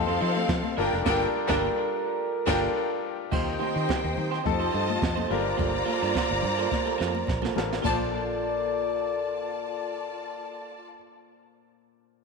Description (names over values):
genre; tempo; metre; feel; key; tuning
disco; 106 BPM; 4/4; straight; Bb major; A4 = 440 Hz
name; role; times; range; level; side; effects
clear symphonic string section; second line; 0.0-10.9 s; C4 to Bb5; -31 LUFS; left 1 dB; tape echo
warm grand piano; accompaniment; 0.0-12.2 s; Bb2 to C5; -32 LUFS; left 13 dB; none
mellow French horn section; sustained chords; 0.0-10.9 s; Eb3 to D5; -31 LUFS; right 1 dB; stereo widening
fingered electric bass; bass; 0.0-10.9 s; F1 to F3; -32 LUFS; equal; none
electric guitar at the edge of break-up; accompaniment; 0.1-11.4 s; Bb3 to D5; -34 LUFS; right 13 dB; none
jazz brush drum kit; drums; 0.1-8.0 s; crash cymbal, hi-hat, kick drum, snare drum; -32 LUFS; right 3 dB; none
congas; percussion; 0.1-8.1 s; none; -38 LUFS; left 11 dB; none
room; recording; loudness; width
moderate echo chamber reverb, RT60 2.4 s; 1960s-style stereo with parts hard left and right; -24 LUFS; side -4 dB against mid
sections
0.0-3.3 A section; 3.3-7.8 B section; 7.8-10.1 C section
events
band accent 1.1-3.3; drum fill 6.7-7.8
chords
0.0 F7; 0.8 Gm9; 3.3 Eb6; 4.5 F7; 5.3 Gm9; 7.8 Bbmaj7